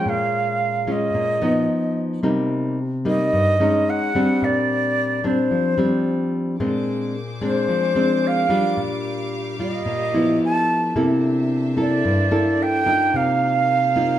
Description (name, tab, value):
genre	bossa nova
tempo	110 BPM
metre	4/4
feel	straight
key	Bb major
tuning	A4 = 439 Hz
part	mellow silver concert flute	melody	0.0-14.2 s	C5 to A5	-21 LUFS	right 2 dB	plate reverb
part	nylon-string guitar	accompaniment	0.0-14.2 s	G2 to A4	-20 LUFS	left 1 dB	none
part	warm chamber string section	sustained chords	6.6-14.2 s	C3 to D6	-32 LUFS	right 2 dB	none
room	wet studio reverb, RT60 0.6 s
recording	heard from further back in the room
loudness	-18 LUFS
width	side -11 dB against mid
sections	0.0-14.2 A section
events	none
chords	0.1 Db13/Bb; 1.7 B; 2.2 Cm7; 3.9 Ab7#11; 4.4 Bb69; 6.6 Bb9; 8.8 Ebmaj9/Bb; 10.4 G13; 11.0 C13; 13.1 F7sus4/C